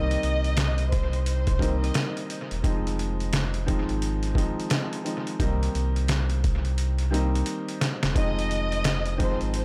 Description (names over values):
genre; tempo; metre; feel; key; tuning
hip hop, boom-bap hip-hop; 87 BPM; 4/4; swing 62% on 16ths; F minor; A4 = 439 Hz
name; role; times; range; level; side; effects
warm symphonic violin section; melody; 0.0-2.1, 8.2-9.6 s; C5 to Eb5; -33 LUFS; equal; high-pass filter, low-pass filter, analog delay
clear upright piano; accompaniment; 0.0-9.6 s; Eb3 to Eb4; -33 LUFS; equal; high-pass filter, low-pass filter
sub bass with octave; bass; 0.0-9.6 s; E1 to C2; -29 LUFS; equal; none
trip hop sampler-style drum kit; drums; 0.1-9.6 s; hi-hat, kick drum, snare drum; -30 LUFS; equal; analog delay
room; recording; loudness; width
little or no reverb; echo-heavy mix; -26 LUFS; mono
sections
0.0-8.2 A section; 8.2-9.6 A section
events
drum fill 6.8-8.2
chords
0.0 Cm7; 2.6 Fm7; 5.4 Cm7; 8.2 Fm7